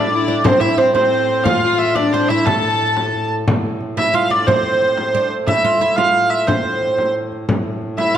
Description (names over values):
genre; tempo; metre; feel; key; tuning
medieval dance; 119 BPM (dotted quarters); 6/8; straight; A minor; A4 = 440 Hz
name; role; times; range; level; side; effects
warm hurdy-gurdy; melody; 0.0-8.2 s; C5 to A5; -17 LUFS; right 1 dB; none
oud; second line; 0.0-8.2 s; C4 to A4; -22 LUFS; right 6 dB; none
warm fiddle; second line; 0.0-3.3, 8.0-8.2 s; C4 to A4; -20 LUFS; left 5 dB; none
pedal harmonium; drone; 0.0-8.2 s; A2; -25 LUFS; left 1 dB; none
frame drum; percussion; 0.5-8.1 s; none; -22 LUFS; left 1 dB; none
room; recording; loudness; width
wet recital hall reverb, RT60 1.6 s; dark, warm production; -14 LUFS; side -10 dB against mid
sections
0.0-3.5 A section; 3.5-8.2 B section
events
none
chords
none